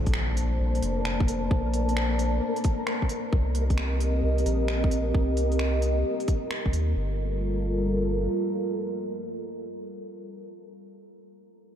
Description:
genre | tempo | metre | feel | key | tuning
future garage | 132 BPM | 4/4 | swing 66% on 16ths | G minor | A4 = 440 Hz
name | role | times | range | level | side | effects
dark analog pad | sustained chords | 0.0-11.0 s | G3 to A5 | -29 LUFS | equal | chorus, sidechain pumping
soft dub sub bass | bass | 0.0-8.3 s | F1 to Eb2 | -26 LUFS | equal | sidechain pumping
impact | sound effects | 0.0-1.5 s | none | -39 LUFS | left 1 dB | none
flickering grainy texture | texture | 0.7-7.0 s | Bb3 to Bb4 | -36 LUFS | left 1 dB | built-in reverb, ensemble chorus
electronic kick drum | drums | 0.1-6.7 s | none | -26 LUFS | equal | none
garage drum kit | drums | 0.1-6.9 s | finger snaps, hi-hat | -36 LUFS | equal | none
room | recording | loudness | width
moderate cathedral reverb, RT60 6.7 s | dreamy mix soaked in reverb | -24 LUFS | side -10 dB against mid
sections
0.0-7.0 A section; 7.0-10.6 B section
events
impact 0.0-1.5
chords
0.0 Bbmaj9; 3.3 Cm7; 7.0 Gm9

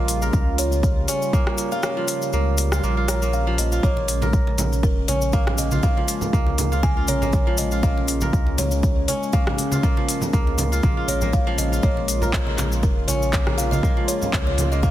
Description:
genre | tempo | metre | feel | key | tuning
afro house | 120 BPM | 4/4 | swing 55% on 16ths | Bb dorian | A4 = 440 Hz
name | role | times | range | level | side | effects
buzzing kalimba | melody | 0.0-14.9 s | Bb4 to Ab5 | -28 LUFS | equal | tape echo
warm analog pad | sustained chords | 0.0-14.9 s | Db3 to F4 | -28 LUFS | equal | chorus, sidechain pumping
kora | arpeggios | 0.0-14.9 s | F3 to Bb4 | -29 LUFS | right 1 dB | sidechain pumping, tape echo
warm sub bass | bass | 0.0-14.9 s | F1 to Db2 | -24 LUFS | equal | sidechain pumping
afro-pop drum kit | drums | 0.1-14.7 s | handclaps, hi-hat, rim click | -27 LUFS | left 2 dB | none
cabasa | percussion | 0.1-14.9 s | none | -32 LUFS | left 4 dB | none
electronic kick drum | drums | 0.3-14.9 s | none | -21 LUFS | equal | none
congas | percussion | 4.0-14.9 s | none | -29 LUFS | right 2 dB | none
room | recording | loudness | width
light reverb, small room ambience | dense, heavily limited modern master | -18 LUFS | side -13 dB against mid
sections
0.0-14.9 A section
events
kick drops out 1.8-3.8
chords
0.0 Db; 3.8 Bbm7

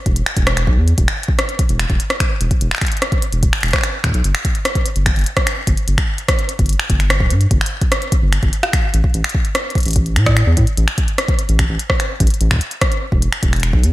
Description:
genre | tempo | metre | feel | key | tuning
IDM | 147 BPM | 4/4 | straight | unclear | A4 = 440 Hz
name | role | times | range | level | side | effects
round analog bass | bass | 0.1-13.9 s | D1 to A2 | -16 LUFS | equal | tube saturation
electronic kick drum | drums | 0.1-13.8 s | none | -18 LUFS | equal | none
glitchy drum kit | drums | 0.1-13.9 s | finger snaps, hi-hat, rim click | -20 LUFS | equal | gated reverb, ping-pong delay
room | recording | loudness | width
little or no reverb | bright 1980s-style digital production | -14 LUFS | side -17 dB against mid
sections
0.0-13.9 A section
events
none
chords
none

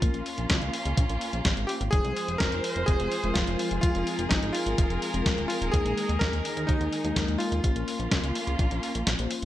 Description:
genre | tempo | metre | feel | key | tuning
italo disco | 126 BPM | 4/4 | straight | F minor | A4 = 437 Hz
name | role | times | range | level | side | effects
clear electric grand piano | melody | 0.0-8.3 s | Eb4 to Bb4 | -31 LUFS | equal | ping-pong delay
dark chamber string section | sustained chords | 0.0-9.4 s | Eb3 to C5 | -33 LUFS | right 1 dB | none
mellow synth brass | stabs | 0.0-9.4 s | Ab3 to C5 | -35 LUFS | left 3 dB | chorus, cassette tape
chorused synth bass | bass | 0.0-9.4 s | Eb1 to Eb2 | -31 LUFS | equal | none
clean 12-bit digital drum machine | drums | 0.0-9.4 s | hi-hat, snare drum | -30 LUFS | equal | gated reverb
electronic kick drum | drums | 0.0-8.7 s | none | -26 LUFS | equal | none
room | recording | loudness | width
light reverb, digital ambience | none | -24 LUFS | side -13 dB against mid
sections
0.0-9.4 A section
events
filter sweep on analog polysynth 0.0-9.4; kick drops out 9.1-9.4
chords
0.0 Bbm; 1.9 Fm; 5.7 Ebsus4; 7.6 Bbm

